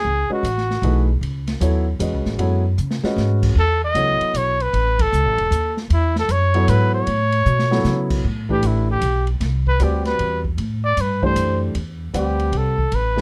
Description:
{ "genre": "modal jazz", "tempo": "154 BPM", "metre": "3/4", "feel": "swing 65% on 8ths", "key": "A dorian from 8.2 s", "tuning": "A4 = 439 Hz", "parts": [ { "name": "mellow trumpet", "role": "melody", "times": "0.0-1.1, 3.6-13.2 s", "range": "E4 to D#5", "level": "-23 LUFS", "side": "equal", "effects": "none" }, { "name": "upright bass", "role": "bass", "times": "0.0-13.2 s", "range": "E1 to C#3", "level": "-22 LUFS", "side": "equal", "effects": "none" }, { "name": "warm grand piano", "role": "accompaniment", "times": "0.3-13.2 s", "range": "E3 to F#5", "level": "-26 LUFS", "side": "equal", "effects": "none" }, { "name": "open jazz drum kit", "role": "drums", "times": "0.4-13.2 s", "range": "crash cymbal, hi-hat, kick drum, ride cymbal, snare drum", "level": "-30 LUFS", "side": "equal", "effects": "none" } ], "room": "little or no reverb", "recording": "close, detailed microphones", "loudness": "-19 LUFS", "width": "mono", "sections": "0.0-8.2 A section; 8.2-13.2 B section", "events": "drum fill 2.8-3.2, 7.5-7.9; band accent 4.9; trumpet solo 8.2-13.2", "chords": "0.0 F#m11; 3.6 A; 8.2 Am9" }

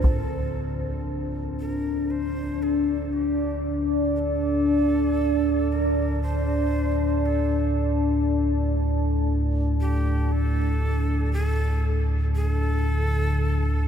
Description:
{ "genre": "ambient", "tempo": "59 BPM", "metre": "4/4", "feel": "straight", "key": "D minor", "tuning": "A4 = 435 Hz", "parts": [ { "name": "breathy bright shakuhachi", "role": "melody", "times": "0.0-13.8 s", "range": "G4 to C5", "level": "-36 LUFS", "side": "equal", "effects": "ping-pong delay" }, { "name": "deep dark ambient pad", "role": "sustained chords", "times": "0.0-13.9 s", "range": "D4 to A5", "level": "-25 LUFS", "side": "left 1 dB", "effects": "chorus, built-in reverb" }, { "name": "deep rumbling drone", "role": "drone", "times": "0.0-13.9 s", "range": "D2 to A2", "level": "-24 LUFS", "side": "equal", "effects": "built-in reverb" }, { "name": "bronze singing bowl", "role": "texture", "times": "0.0-13.9 s", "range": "A5", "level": "-52 LUFS", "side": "left 1 dB", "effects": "none" } ], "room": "wet huge ambient reverb, RT60 8.5 s", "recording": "none", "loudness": "-22 LUFS", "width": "side -8 dB against mid", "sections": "0.0-13.9 A section", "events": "fade-in on shakuhachi 0.0-13.9", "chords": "0.0 Dm7" }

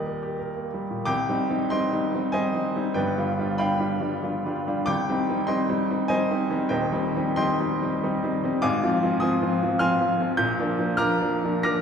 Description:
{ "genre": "classical, romantic character piece for solo piano", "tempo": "84-103 BPM", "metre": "3/4", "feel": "rubato", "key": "C minor", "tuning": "A4 = 440 Hz", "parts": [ { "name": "clear baby grand piano", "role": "solo", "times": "0.0-11.8 s", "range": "Eb1 to Bb6", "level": "-22 LUFS", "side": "equal", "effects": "none" } ], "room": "wet concert hall reverb, RT60 2.2 s", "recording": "heard from further back in the room", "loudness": "-22 LUFS", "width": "side -7 dB against mid", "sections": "0.0-1.1 A section; 1.1-11.8 B section", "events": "none", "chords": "0.0 Eb; 1.1 Cm; 3.0 G7; 4.9 Cm; 6.7 Cm/Eb; 8.6 Fm7/Ab; 10.4 Bb" }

